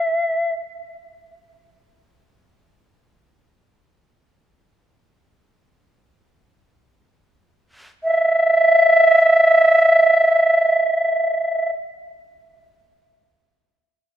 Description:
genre	japanese traditional, Japanese chamber music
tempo	free time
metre	none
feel	none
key	unclear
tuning	A4 = 440 Hz
part	bright reedy shakuhachi	solo	0.0-0.5, 8.0-11.7 s	E5	-13 LUFS	right 1 dB	none
room	light reverb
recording	minimal, uncompressed stereo recording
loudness	-13 LUFS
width	side -11 dB against mid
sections	0.0-8.0 A section; 8.0-14.0 B section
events	slowing down 2.5-8.0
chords	none

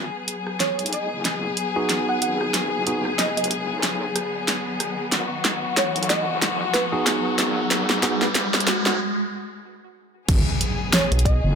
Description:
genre	glitch hop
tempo	93 BPM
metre	4/4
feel	swing 58% on 16ths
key	G# minor pentatonic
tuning	A4 = 440 Hz
part	warm studio string section	sustained chords	0.0-11.6 s	F#3 to G#4	-27 LUFS	left 4 dB	sidechain pumping
part	wobble bass	bass	0.0-11.6 s	F#1 to B1	-30 LUFS	equal	chorus, tube saturation, high-pass filter
part	riser and impact	sound effects	2.3-11.6 s	none	-28 LUFS	right 1 dB	none
part	pop drum kit	drums	0.3-11.4 s	crash cymbal, hi-hat, rim click, snare drum	-23 LUFS	equal	high-pass filter on hats, high-pass filter on snare, high-pass filter on toms, high-pass filter on cymbals, high-pass filter on room
part	woody wave-folded pluck	melody	0.6-11.6 s	F#4 to F#5	-28 LUFS	right 2 dB	ensemble chorus, ping-pong delay
part	tine electric piano	stabs	1.8-8.3 s	B3 to G#4	-26 LUFS	right 2 dB	sidechain pumping, low-pass filter, ping-pong delay
part	electronic kick drum	drums	10.3-11.4 s	none	-21 LUFS	equal	none
part	rubbery square bass	bass	11.1-11.4 s	B1	-19 LUFS	equal	none
room	light reverb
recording	none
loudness	-20 LUFS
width	side -6 dB against mid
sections	0.0-10.3 A section; 10.3-11.6 B section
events	build-up 0.0-10.3; drum fill 0.0-9.0; riser 2.3-9.0; break 9.0-10.3; drop 10.3-11.6; impact 10.3-11.6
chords	0.0 G#m7

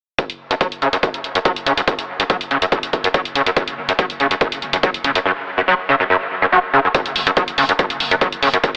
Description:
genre	driving peak-time techno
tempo	142 BPM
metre	4/4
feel	straight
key	unclear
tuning	A4 = 442 Hz
part	screaming distorted acid line	riff	0.2-8.7 s	F#2 to F#3	-20 LUFS	equal	distortion, ensemble chorus, sidechain pumping, tape echo
part	electronic hi-hat	drums	0.2-8.8 s	none	-25 LUFS	equal	sidechain pumping on hats
part	electronic kick drum	drums	0.2-8.7 s	none	-22 LUFS	equal	none
part	growling 808-style bass	bass	3.7-8.8 s	F#1	-43 LUFS	equal	tube saturation, sidechain pumping, low-pass filter
room	moderate huge ambient reverb, RT60 7.1 s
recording	heavily compressed radio sound, telephone sound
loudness	-18 LUFS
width	mono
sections	0.2-6.9 A section; 6.9-8.8 B section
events	none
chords	0.2 F#5

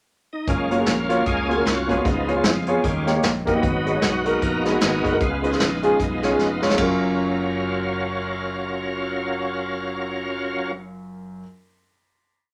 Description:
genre	uptempo gospel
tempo	152 BPM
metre	4/4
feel	swing 59% on 8ths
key	F# major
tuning	A4 = 441 Hz
part	bright tonewheel organ	sustained chords	0.3-10.7 s	E#3 to A#4	-27 LUFS	equal	slow rotary speaker, chorus vibrato
part	fingered electric bass	bass	0.5-11.4 s	E#1 to E#2	-33 LUFS	equal	none
part	vintage brush drum kit	drums	0.5-6.9 s	hi-hat, kick drum, ride cymbal, snare drum	-28 LUFS	equal	none
part	warm concert grand piano	accompaniment	0.7-11.4 s	F#2 to D#5	-26 LUFS	equal	none
room	wet small room reverb, RT60 0.5 s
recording	none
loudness	-22 LUFS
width	mono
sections	0.0-0.5 pickup bar; 0.5-6.8 breakdown; 6.8-10.0 final chord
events	tonewheel organ solo 0.5-6.8; drum fill 6.4-6.8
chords	0.5 F#maj7; 2.1 C#7; 2.8 D#7; 3.6 G#m7; 5.2 C#7; 6.8 F#maj7

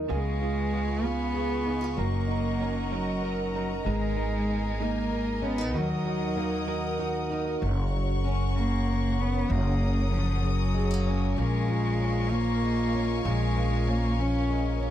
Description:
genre	six-eight pop ballad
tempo	64 BPM (dotted quarters)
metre	6/8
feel	straight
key	F# major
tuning	A4 = 440 Hz
part	fingerpicked plugged-in steel-string acoustic guitar	accompaniment	0.0-14.9 s	F#2 to A#4	-32 LUFS	equal	double-tracked left and right
part	upright bass	bass	0.0-14.9 s	F#1 to D#2	-29 LUFS	equal	none
part	warm cello	melody	0.1-14.9 s	E#3 to C#4	-30 LUFS	equal	none
part	warm studio string section	sustained chords	0.1-14.9 s	A#4 to D#6	-36 LUFS	left 3 dB	none
part	direct-recorded clean electric guitar	arpeggios	0.1-7.6 s	G#2 to A#4	-37 LUFS	right 13 dB	spring reverb, tape echo
room	little or no reverb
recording	dry, close 1970s-style studio recording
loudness	-25 LUFS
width	side -11 dB against mid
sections	0.0-7.6 A section; 7.6-14.9 B section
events	none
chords	0.1 C#7; 2.0 F#6; 3.9 G#madd9; 5.7 D#m; 7.6 F#; 11.4 A#m7

